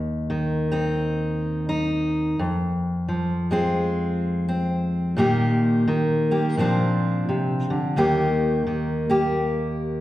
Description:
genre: folk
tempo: 86 BPM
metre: 4/4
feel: swing 60% on 8ths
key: Eb major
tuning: A4 = 440 Hz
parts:
  - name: fingerpicked steel-string acoustic guitar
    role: solo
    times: 0.0-10.0 s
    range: Eb2 to G4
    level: -21 LUFS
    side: equal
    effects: none
room: wet recital hall reverb, RT60 1.4 s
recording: recorded in a church or concert hall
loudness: -20 LUFS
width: side -15 dB against mid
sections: 0.0-10.0 A section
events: none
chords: 0.0 Cm/Eb; 2.4 Fm; 5.2 Eb/Bb; 6.6 Bbadd9; 8.0 Eb

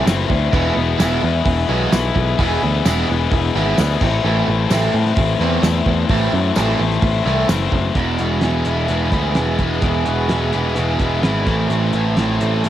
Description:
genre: indie rock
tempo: 129 BPM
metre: 4/4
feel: straight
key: unclear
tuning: A4 = 440 Hz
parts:
  - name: fuzz guitar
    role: riff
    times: 0.0-12.7 s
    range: E2 to F#4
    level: -22 LUFS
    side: right 7 dB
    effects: distortion, wide subtle chorus, cassette tape, analog delay
  - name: raw garage guitar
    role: riff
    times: 0.0-12.7 s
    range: A2 to E4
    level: -20 LUFS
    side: left 7 dB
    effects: overdrive, cassette tape
  - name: picked electric bass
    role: bass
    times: 0.1-12.7 s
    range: E1 to A2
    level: -20 LUFS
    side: right 1 dB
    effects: none
  - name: cloth-damped thuddy drum kit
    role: drums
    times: 0.1-12.7 s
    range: crash cymbal, hi-hat, kick drum, snare drum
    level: -21 LUFS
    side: right 1 dB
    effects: cassette tape
  - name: tambourine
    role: percussion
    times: 0.1-7.6 s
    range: none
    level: -33 LUFS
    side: right 10 dB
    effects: none
room: light reverb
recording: home recording on cassette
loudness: -15 LUFS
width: side -12 dB against mid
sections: 0.0-8.0 A section; 8.0-12.7 B section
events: none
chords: 0.0 Am; 0.5 E; 4.0 Am; 8.0 Eadd9; 11.5 Am

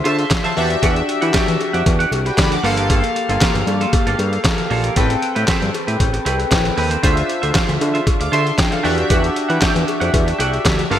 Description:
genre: early-eighties boogie funk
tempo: 116 BPM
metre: 4/4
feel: straight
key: unclear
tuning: A4 = 440 Hz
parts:
  - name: chorused polysynth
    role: accompaniment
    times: 0.0-11.0 s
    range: Bb3 to D6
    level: -20 LUFS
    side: left 1 dB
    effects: none
  - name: clean electric guitar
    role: riff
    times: 0.0-11.0 s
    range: Bb3 to G5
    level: -24 LUFS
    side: right 4 dB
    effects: lush chorus
  - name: fat analog bass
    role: bass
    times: 0.0-11.0 s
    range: G1 to E3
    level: -20 LUFS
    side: equal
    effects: none
  - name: trip hop sampler-style drum kit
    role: drums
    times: 0.1-11.0 s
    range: handclaps, hi-hat, kick drum, snare drum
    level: -19 LUFS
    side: equal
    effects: none
  - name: cowbell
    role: percussion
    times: 0.1-10.8 s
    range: none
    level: -28 LUFS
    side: left 3 dB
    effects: none
room: moderate lush hall reverb, RT60 1.8 s, digital ambience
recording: bright 1980s-style digital production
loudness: -15 LUFS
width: side -10 dB against mid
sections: 0.0-11.0 A section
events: none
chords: 0.0 Dm9; 0.6 Em9; 2.6 Gm9; 5.0 Am9; 7.0 Dm9; 8.8 Em9

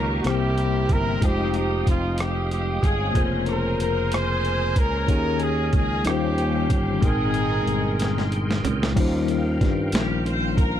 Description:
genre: slow gospel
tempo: 62 BPM (dotted quarters)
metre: 6/8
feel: straight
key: unclear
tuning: A4 = 439 Hz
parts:
  - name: bright trumpet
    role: melody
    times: 0.0-8.3 s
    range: F4 to C5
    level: -28 LUFS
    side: right 3 dB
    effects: none
  - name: dark studio string section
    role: melody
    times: 0.0-10.8 s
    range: Bb3 to C5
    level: -29 LUFS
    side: left 3 dB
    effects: none
  - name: mellow tine electric piano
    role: accompaniment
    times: 0.0-10.8 s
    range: Bb2 to G5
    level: -26 LUFS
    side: left 4 dB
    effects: medium stereo tremolo
  - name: bright tonewheel organ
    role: sustained chords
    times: 0.0-10.8 s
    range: Ab3 to Eb6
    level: -33 LUFS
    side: right 1 dB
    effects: fast rotary speaker, chorus vibrato
  - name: modern bright fingered electric bass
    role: bass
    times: 0.0-10.8 s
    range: F1 to G2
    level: -26 LUFS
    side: equal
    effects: none
  - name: boom bap sampler-style drum kit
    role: drums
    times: 0.2-10.7 s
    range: crash cymbal, hi-hat, kick drum, rim click, snare drum, toms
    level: -23 LUFS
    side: right 1 dB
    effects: none
room: light reverb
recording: dark, warm production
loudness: -20 LUFS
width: side -10 dB against mid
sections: 0.0-9.0 A section; 9.0-10.8 B section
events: drum fill 8.0-9.0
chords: 0.3 C7; 1.2 Fm9; 3.2 Bbm9/F; 5.1 Eb7sus4; 6.1 Eb13; 7.0 Abmaj9; 9.0 Eb13

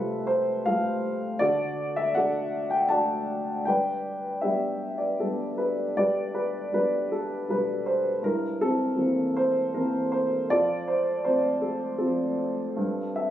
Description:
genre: classical, lyrical solo piano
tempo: 79 BPM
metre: 3/4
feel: rubato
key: unclear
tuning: A4 = 440 Hz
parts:
  - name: dark upright piano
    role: solo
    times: 0.0-13.3 s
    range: F2 to A5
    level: -24 LUFS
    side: equal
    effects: none
room: light reverb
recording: recorded on a phone in the room, club reverb, compression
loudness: -24 LUFS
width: side -12 dB against mid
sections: 0.0-13.3 A section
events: upright piano fill 12.8-13.3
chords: 0.0 Fadd9/C; 1.4 D; 3.7 G; 8.2 C7/G; 10.5 F; 12.8 G9sus4

